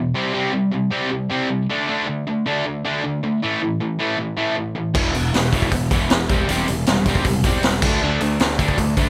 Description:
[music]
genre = punk rock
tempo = 156 BPM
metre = 4/4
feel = straight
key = unclear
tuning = A4 = 438 Hz
[part]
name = distorted electric guitar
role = riff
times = 0.0-9.1 s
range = E2 to D4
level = -26 LUFS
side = equal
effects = distortion
[part]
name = distorted electric guitar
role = riff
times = 0.0-9.1 s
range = E2 to D4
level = -25 LUFS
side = equal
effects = distortion
[part]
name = fuzz picked electric bass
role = bass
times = 4.9-9.1 s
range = E1 to D2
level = -26 LUFS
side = equal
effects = overdrive
[part]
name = raw garage drum kit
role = drums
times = 4.9-9.1 s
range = crash cymbal, hi-hat, kick drum, snare drum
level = -22 LUFS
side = equal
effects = none
[sound]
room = little or no reverb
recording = none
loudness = -20 LUFS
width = mono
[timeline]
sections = 0.0-9.1 A section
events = none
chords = 0.1 C5; 1.7 D5; 3.4 A5; 5.0 E5; 6.3 C/E; 7.8 D5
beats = | 0.33 0.72 1.10 1.49 | 1.88 2.26 2.65 3.03 | 3.42 3.80 4.18 4.57 | 4.95 5.33 5.72 6.10 | 6.49 6.87 7.25 7.63 | 8.01 8.40 8.78

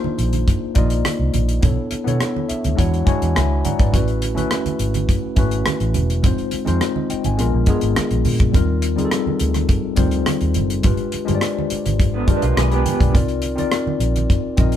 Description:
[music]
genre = lush 1970s-style soul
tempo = 104 BPM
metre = 4/4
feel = straight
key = unclear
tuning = A4 = 440 Hz
[part]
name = bright tine electric piano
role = accompaniment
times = 0.0-14.8 s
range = G3 to D6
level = -22 LUFS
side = left 4 dB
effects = medium stereo tremolo
[part]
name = congas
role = percussion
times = 0.0-14.7 s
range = none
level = -28 LUFS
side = right 7 dB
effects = none
[part]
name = vintage muted fingered electric bass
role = bass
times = 0.1-14.8 s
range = E1 to B2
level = -21 LUFS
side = equal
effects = none
[part]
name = tight funk drum kit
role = drums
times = 0.2-14.8 s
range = hi-hat, kick drum, rim click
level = -20 LUFS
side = equal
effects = none
[part]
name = electric guitar through a small old amp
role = riff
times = 12.1-13.1 s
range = D3 to Ab4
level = -23 LUFS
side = right 6 dB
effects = tremolo
[sound]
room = light reverb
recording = band playing live in one room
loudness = -16 LUFS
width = side -10 dB against mid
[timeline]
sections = 0.0-14.8 A section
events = tine electric piano fill 2.2-3.9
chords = 0.0 Cm11; 1.6 Bm11; 2.8 E13; 3.9 A69; 6.2 Fm7; 7.4 Bb7b9; 8.5 Eb69; 10.8 G7b9; 13.2 Cm11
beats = 0.47 1.05 | 1.63 2.20 2.78 3.36 | 3.93 4.51 5.08 5.66 | 6.24 6.81 7.39 7.97 | 8.54 9.12 9.69 10.27 | 10.85 11.42 12.00 12.57 | 13.15 13.73 14.30

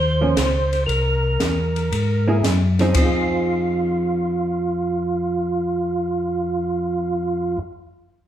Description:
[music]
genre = soul jazz organ trio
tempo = 116 BPM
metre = 4/4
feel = swing 69% on 8ths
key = F minor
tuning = A4 = 440 Hz
[part]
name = percussive tonewheel organ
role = melody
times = 0.0-7.6 s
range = F4 to C5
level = -22 LUFS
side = right 2 dB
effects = slow rotary speaker, chorus vibrato
[part]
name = mellow tonewheel organ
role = bass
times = 0.0-7.6 s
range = C2 to Ab2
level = -22 LUFS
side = equal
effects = slow rotary speaker
[part]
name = hollow-body jazz guitar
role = accompaniment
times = 0.2-7.7 s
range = F3 to Ab4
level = -24 LUFS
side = right 1 dB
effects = none
[part]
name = open jazz drum kit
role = drums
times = 0.4-3.1 s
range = hi-hat, kick drum, ride cymbal, snare drum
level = -24 LUFS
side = equal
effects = none
[sound]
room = moderate large studio reverb, RT60 1.1 s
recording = band playing live in one room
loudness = -18 LUFS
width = side -10 dB against mid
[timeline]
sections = 0.0-3.0 A section; 3.0-7.1 B section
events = none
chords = 0.0 Gm7b5 (rootless); 0.9 C7b13; 3.0 Fm7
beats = 0.37 | 0.88 1.40 1.92 2.43 | 2.95 3.47 3.98 4.50 | 5.02 5.54 6.05 6.57

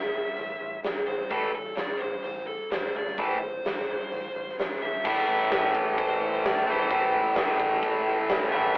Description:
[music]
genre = hard rock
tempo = 129 BPM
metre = 4/4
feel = straight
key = A minor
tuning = A4 = 437 Hz
[part]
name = dark smooth lead guitar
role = melody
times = 0.0-8.7 s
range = A4 to E5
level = -35 LUFS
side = equal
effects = overdrive
[part]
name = picked electric bass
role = bass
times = 0.0-8.8 s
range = A1 to D2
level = -43 LUFS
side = equal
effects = none
[part]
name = huge arena drum kit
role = drums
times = 0.4-8.8 s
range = crash cymbal, hi-hat, kick drum, snare drum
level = -33 LUFS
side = equal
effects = none
[part]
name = distorted electric guitar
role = riff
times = 1.3-8.8 s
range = A2 to A3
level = -27 LUFS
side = equal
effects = overdrive
[sound]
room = wet small room reverb, RT60 0.5 s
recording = rough rehearsal-room recording, tube saturation, telephone sound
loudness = -27 LUFS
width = mono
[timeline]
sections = 0.0-5.0 A section; 5.0-8.8 B section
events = none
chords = 0.0 Am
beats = 0.37 0.84 | 1.31 1.77 2.24 2.71 | 3.18 3.64 4.11 4.58 | 5.04 5.50 5.97 6.43 | 6.90 7.36 7.82 8.29 | 8.75

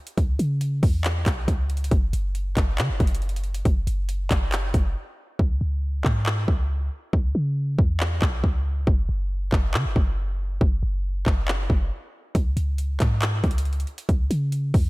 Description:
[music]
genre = hip hop, trap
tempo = 138 BPM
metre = 4/4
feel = half-time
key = unclear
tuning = A4 = 444 Hz
[part]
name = trap drum kit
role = drums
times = 0.1-14.8 s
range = handclaps, hi-hat, kick drum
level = -22 LUFS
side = equal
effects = none
[part]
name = clean 808-style bass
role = bass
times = 0.2-14.9 s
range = F#1 to C#3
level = -24 LUFS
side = equal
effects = none
[sound]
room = little or no reverb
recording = none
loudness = -21 LUFS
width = side -22 dB against mid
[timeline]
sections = 0.0-14.9 A section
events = break 5.0-5.4, 11.9-12.3; hi-hats muted 5.4-12.3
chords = none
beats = | 0.18 0.61 1.04 1.48 | 1.92 2.35 2.78 3.22 | 3.65 4.09 4.52 4.96 | 5.39 5.83 6.26 6.70 | 7.13 7.57 8.00 8.44 | 8.87 9.31 9.74 10.18 | 10.61 11.04 11.48 11.91 | 12.35 12.78 13.22 13.65 | 14.09 14.52

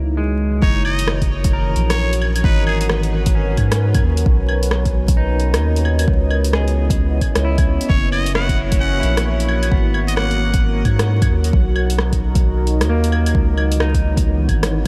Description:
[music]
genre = future garage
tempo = 132 BPM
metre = 4/4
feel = swing 62% on 16ths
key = unclear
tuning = A4 = 440 Hz
[part]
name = deep dark ambient pad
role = sustained chords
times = 0.0-14.9 s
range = E3 to D#5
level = -28 LUFS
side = equal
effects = chorus, built-in reverb, sidechain pumping
[part]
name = soft dub sub bass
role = bass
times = 0.0-14.9 s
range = F#1 to G#2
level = -20 LUFS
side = equal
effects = sidechain pumping
[part]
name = drifting glass-harmonics texture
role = texture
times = 0.0-14.9 s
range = C#4 to D#5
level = -34 LUFS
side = equal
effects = none
[part]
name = clean electric guitar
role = accompaniment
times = 0.2-14.5 s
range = G#3 to A#4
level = -30 LUFS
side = equal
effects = subtle chorus, sidechain pumping, tape echo
[part]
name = trumpet with straight mute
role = melody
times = 0.6-2.9, 7.9-10.6 s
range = G#4 to F#5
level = -29 LUFS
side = equal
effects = vintage 12-bit sampler grit, tape echo
[part]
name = electronic kick drum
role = drums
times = 0.6-14.6 s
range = none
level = -20 LUFS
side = equal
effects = none
[part]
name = deep house drum kit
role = drums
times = 0.8-14.7 s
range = claves, hi-hat, rim click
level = -27 LUFS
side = equal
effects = none
[sound]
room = light reverb, digital ambience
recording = vinyl crackle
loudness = -17 LUFS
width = mono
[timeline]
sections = 0.6-14.9 A section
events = none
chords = 0.0 C#madd9; 0.6 F#7; 2.4 G#m11; 4.3 Bmaj7; 6.1 C#m9; 7.9 F#7; 9.7 G#m11; 11.5 Bmaj7; 13.3 C#m9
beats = 0.17 | 0.62 1.08 1.53 1.99 | 2.44 2.90 3.35 3.80 | 4.26 4.71 5.17 5.62 | 6.08 6.53 6.99 7.44 | 7.89 8.35 8.80 9.26 | 9.71 10.17 10.62 11.08 | 11.53 11.99 12.44 12.89 | 13.35 13.80 14.26 14.71

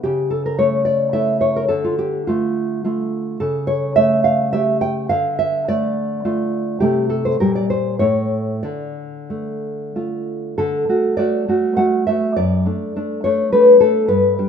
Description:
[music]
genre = romantic piece for solo classical guitar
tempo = 91-109 BPM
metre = 3/4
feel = rubato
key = D minor, D major from 10.6 s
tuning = A4 = 440 Hz
[part]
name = nylon-string guitar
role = solo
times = 0.0-14.5 s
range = F#2 to G5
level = -16 LUFS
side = equal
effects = none
[sound]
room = moderate recital hall reverb, RT60 1.6 s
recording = minimal, uncompressed stereo recording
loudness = -16 LUFS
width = side -7 dB against mid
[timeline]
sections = 0.0-10.6 A section; 10.6-14.5 B section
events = none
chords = 0.0 A/C#; 1.7 Dm; 3.4 A7/C#; 5.1 Dm; 6.8 Am/C; 7.4 Gm/Bb; 8.0 A; 8.6 Dm; 10.6 D; 12.4 D/F#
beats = | 0.03 0.59 1.15 | 1.72 2.29 2.85 | 3.41 3.97 4.53 | 5.11 5.69 6.25 | 6.83 7.41 8.00 | 8.64 9.30 9.95 | 10.58 11.18 11.78 | 12.37 12.95 13.54 | 14.11

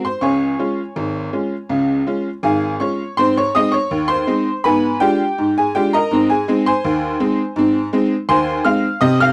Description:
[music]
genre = ragtime piano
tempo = 82 BPM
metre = 2/4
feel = straight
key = Db major, Ab major from 3.2 s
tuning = A4 = 436 Hz
[part]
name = tack piano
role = solo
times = 0.0-9.3 s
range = Ab1 to F6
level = -18 LUFS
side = equal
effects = none
[sound]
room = light reverb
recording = dry, close 1970s-style studio recording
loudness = -18 LUFS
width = mono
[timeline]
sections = 0.0-3.2 A section; 3.2-9.3 B section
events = none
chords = 0.2 Db; 3.2 Ab; 4.6 Abdim7; 6.1 Ab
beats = | 0.21 0.95 | 1.69 2.43 | 3.17 3.90 | 4.63 5.37 | 6.10 6.83 | 7.56 8.29 | 9.01

